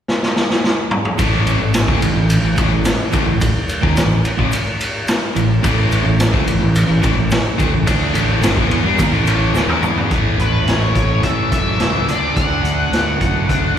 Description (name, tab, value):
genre	classic rock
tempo	108 BPM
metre	4/4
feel	straight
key	unclear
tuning	A4 = 440 Hz
part	raw garage drum kit	drums	0.1-13.6 s	hi-hat, kick drum, ride cymbal, snare drum, toms	-18 LUFS	equal	none
part	crunchy overdriven guitar	riff	1.2-13.8 s	G2 to E4	-22 LUFS	right 9 dB	none
part	overdriven electric guitar	riff	1.2-13.8 s	G2 to E4	-21 LUFS	left 8 dB	slapback echo
part	fuzz fingered electric bass	bass	1.2-13.8 s	G1 to G2	-19 LUFS	equal	overdrive
part	egg shaker	percussion	1.2-10.0 s	none	-41 LUFS	right 4 dB	none
part	octave-fuzz lead guitar	melody	10.4-13.8 s	B4 to F#5	-21 LUFS	equal	wah, distortion, slapback echo
room	light reverb, studio ambience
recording	live gig heard through the venue's PA, recital hall reverb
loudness	-14 LUFS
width	side -9 dB against mid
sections	0.0-1.2 A section; 1.2-10.1 B section; 10.1-13.8 C section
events	drum fill 0.1-1.2, 9.5-10.1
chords	0.0 N.C.; 1.2 A5; 10.1 A; 12.1 D